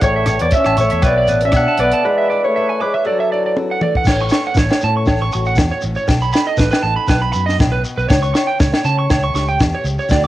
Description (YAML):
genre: highlife guitar band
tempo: 119 BPM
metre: 4/4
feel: swing 54% on 16ths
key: A major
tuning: A4 = 440 Hz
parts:
  - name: Celtic harp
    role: melody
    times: 0.0-5.3 s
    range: G#4 to F#5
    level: -18 LUFS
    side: left 1 dB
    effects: none
  - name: clear trombone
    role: second line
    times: 0.0-3.8 s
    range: F#3 to D4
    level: -23 LUFS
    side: left 3 dB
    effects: cassette tape
  - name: picked steel-string acoustic guitar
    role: accompaniment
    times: 0.0-10.3 s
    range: A2 to E5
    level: -28 LUFS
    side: left 5 dB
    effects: cassette tape
  - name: electric guitar at the edge of break-up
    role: arpeggios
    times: 0.0-10.3 s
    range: B4 to D6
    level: -20 LUFS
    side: right 4 dB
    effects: cassette tape, analog delay
  - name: fingered electric bass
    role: bass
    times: 0.0-10.3 s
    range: A1 to C#3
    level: -20 LUFS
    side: equal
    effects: none
  - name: compact cocktail drum kit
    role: drums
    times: 0.0-10.2 s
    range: crash cymbal, hi-hat, kick drum, rim click, snare drum, toms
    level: -16 LUFS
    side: equal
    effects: cassette tape
  - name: agogo bells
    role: percussion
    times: 0.0-10.2 s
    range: none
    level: -27 LUFS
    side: left 3 dB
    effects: none
  - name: shekere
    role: percussion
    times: 0.0-10.3 s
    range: none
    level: -25 LUFS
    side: left 1 dB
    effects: none
room: light reverb, small room ambience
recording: home recording on cassette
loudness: -13 LUFS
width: side -14 dB against mid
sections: 0.0-4.1 A section; 4.1-10.3 B section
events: break 2.1-4.1; drum fill 3.6-4.1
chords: 0.0 A; 1.0 Bm7; 2.1 E7; 3.1 Dadd9; 4.1 A6; 6.1 B7; 8.1 A7/C#